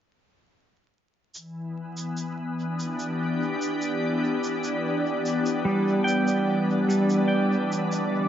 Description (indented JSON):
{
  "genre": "ambient dub",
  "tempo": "73 BPM",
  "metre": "4/4",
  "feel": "straight",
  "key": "E minor",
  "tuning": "A4 = 440 Hz",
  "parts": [
    { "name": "cabasa", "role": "drums", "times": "1.3-8.1 s", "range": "none", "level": "-40 LUFS", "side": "right 1 dB", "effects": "overdrive, dub echo" },
    { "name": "soft additive organ-like pad", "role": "sustained chords", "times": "1.5-8.3 s", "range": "D3 to D5", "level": "-26 LUFS", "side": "left 1 dB", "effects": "ensemble chorus, built-in reverb" },
    { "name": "bubbling stepped-filter texture", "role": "texture", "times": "3.0-8.3 s", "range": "D5", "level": "-34 LUFS", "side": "right 2 dB", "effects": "chorus, built-in reverb" },
    { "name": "pedal steel guitar", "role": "arpeggios", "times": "5.6-7.9 s", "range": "G3 to G5", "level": "-23 LUFS", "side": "right 1 dB", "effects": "low-pass filter, tape echo" }
  ],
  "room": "moderate spring reverb, RT60 2.6 s",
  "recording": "echo-heavy mix, vinyl crackle, nothing above 7.5 kHz",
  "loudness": "-23 LUFS",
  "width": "side -10 dB against mid",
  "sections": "1.4-8.3 A section",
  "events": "none",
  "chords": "1.4 Em7"
}